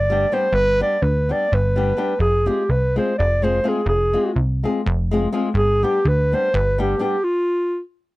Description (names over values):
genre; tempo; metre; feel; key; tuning
balkan folk, Balkan wedding band; 251 BPM (eighths); 7/8; straight; unclear; A4 = 442 Hz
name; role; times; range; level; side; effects
dark clarinet; melody; 0.0-7.8 s; F4 to D5; -19 LUFS; equal; none
plucky analog bass; bass; 0.0-6.9 s; F1 to D2; -20 LUFS; equal; none
flamenco guitar; accompaniment; 0.1-7.2 s; G3 to Ab4; -23 LUFS; left 3 dB; none
room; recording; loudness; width
little or no reverb; dry, close 1970s-style studio recording; -17 LUFS; side -19 dB against mid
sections
0.0-8.2 A section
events
stop 7.2-8.2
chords
0.0 G; 2.2 Fm; 5.5 G; 7.2 N.C.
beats
0.05 0.29 | 0.53 0.77 1.01 1.25 1.49 1.72 1.96 | 2.20 2.44 2.68 2.92 3.16 3.40 3.64 | 3.88 4.11 4.35 4.59 4.83 5.07 5.31 | 5.55 5.79 6.03 6.26 6.50 6.74 6.98 | 7.22 7.46 7.70